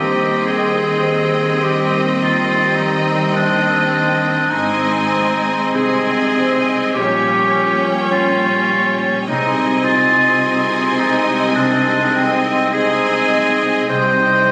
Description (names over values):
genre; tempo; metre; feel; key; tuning
classical; 52 BPM; 4/4; rubato; unclear; A4 = 439 Hz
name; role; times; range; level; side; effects
rich studio violin section; melody; 0.0-14.5 s; G5 to Ab5; -29 LUFS; equal; none
bright clarinet; second line; 0.0-14.5 s; C4 to C5; -20 LUFS; equal; none
rich studio violin section; second line; 0.0-14.5 s; Db5 to Eb5; -25 LUFS; equal; none
rich studio viola section; accompaniment; 0.0-14.5 s; C4 to Db4; -25 LUFS; equal; none
dark French horn section; sustained chords; 0.0-14.5 s; G3 to Eb4; -25 LUFS; equal; none
concert harp; arpeggios; 0.0-14.5 s; Ab2 to C5; -30 LUFS; equal; none
rich studio double bass section; bass; 0.0-14.5 s; Ab1 to Eb2; -30 LUFS; equal; none
warm studio cello section; bass; 0.0-14.5 s; Ab2 to Eb3; -26 LUFS; equal; none
room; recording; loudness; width
wet recital hall reverb, RT60 1.5 s; recorded on a phone in the room, studio reverb, compression; -16 LUFS; mono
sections
0.0-14.5 A section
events
none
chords
0.0 Cm/Eb; 4.5 Ab; 7.0 Gdim/Bb; 9.3 Ab/C; 13.9 Cm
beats
1.03 2.20 3.36 | 4.52 5.77 6.96 8.12 | 9.28 10.42 11.56 12.75 | 13.89